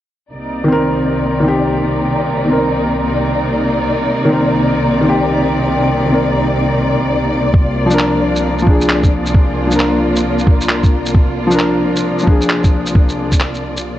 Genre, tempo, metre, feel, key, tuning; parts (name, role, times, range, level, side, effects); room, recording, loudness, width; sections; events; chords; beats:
future garage; 133 BPM; 4/4; swing 63% on 16ths; C minor; A4 = 441 Hz
warm studio string section; sustained chords; 0.3-14.0 s; C2 to D5; -16 LUFS; equal; sidechain pumping, low-pass filter
felt-muted upright piano; accompaniment; 0.6-13.3 s; Eb3 to Bb4; -16 LUFS; left 1 dB; sidechain pumping, tape echo
electronic kick drum; drums; 7.5-13.4 s; -10 LUFS; equal; vintage 12-bit sampler grit, studio reverb
electronic shaker and handclaps; drums; 7.9-13.8 s; -20 LUFS; equal; vintage 12-bit sampler grit, studio reverb
moderate huge ambient reverb, RT60 6.6 s; cassette tape; -12 LUFS; side -13 dB against mid
0.3-14.0 A section
0.3 Cm7; 7.5 Bb/C
| 0.32 0.77 1.22 1.67 | 2.12 2.58 3.03 3.48 | 3.93 4.38 4.83 5.28 | 5.73 6.18 6.64 7.09 | 7.54 7.99 8.44 8.89 | 9.34 9.79 10.24 10.70 | 11.15 11.60 12.05 12.50 | 12.95 13.40 13.85